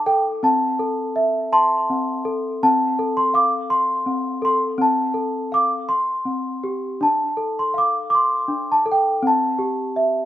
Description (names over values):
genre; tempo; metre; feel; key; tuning
children's music, lullaby; 55 BPM (dotted quarters); 6/8; straight; F major; A4 = 440 Hz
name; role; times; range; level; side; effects
celesta; solo; 0.0-10.3 s; C4 to D6; -18 LUFS; equal; slapback echo
room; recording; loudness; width
little or no reverb; recorded outdoors, with no room sound; -18 LUFS; side -13 dB against mid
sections
0.0-10.3 A section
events
none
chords
0.4 Am; 2.6 F/C; 5.9 C5; 7.0 Dm; 9.2 C